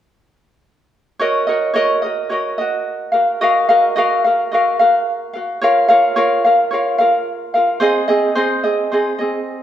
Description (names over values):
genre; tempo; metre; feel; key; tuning
pop; 109 BPM; 4/4; straight; unclear; A4 = 440 Hz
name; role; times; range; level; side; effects
ukulele; accompaniment; 1.2-9.6 s; C4 to F5; -14 LUFS; equal; none
room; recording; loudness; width
wet large studio reverb, RT60 1.4 s; band playing live in one room; -14 LUFS; side -10 dB against mid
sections
1.2-9.6 A section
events
none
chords
1.2 Gb6; 3.1 Ebmadd9; 5.6 Bbm; 7.8 Ab